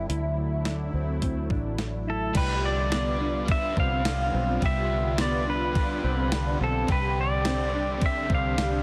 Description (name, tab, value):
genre	dream pop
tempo	106 BPM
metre	4/4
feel	straight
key	unclear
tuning	A4 = 440 Hz
part	lush unison pad	sustained chords	0.0-8.8 s	D3 to G4	-35 LUFS	equal	chorus, phaser
part	mellow electric guitar	arpeggios	0.0-8.8 s	B3 to G4	-36 LUFS	equal	ensemble chorus, tape echo
part	vintage muted fingered electric bass	bass	0.0-8.8 s	A1 to D2	-32 LUFS	equal	none
part	crisp 8-bit digital drum machine	drums	0.1-8.7 s	crash cymbal, hi-hat, kick drum, ride cymbal, snare drum, tambourine	-32 LUFS	equal	none
part	pedal steel guitar	melody	2.1-8.8 s	A4 to F5	-31 LUFS	equal	tape echo
part	overdriven electric guitar	accompaniment	2.3-8.8 s	C3 to C5	-40 LUFS	equal	tremolo, subtle chorus
part	vibraphone with soft mallets	texture	7.5-8.8 s	G4 to D5	-42 LUFS	equal	none
room	light reverb, digital ambience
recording	dense, heavily limited modern master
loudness	-26 LUFS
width	mono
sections	0.0-2.4 A section; 2.4-8.8 B section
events	none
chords	0.1 Dadd9; 2.4 G7; 6.9 Csus2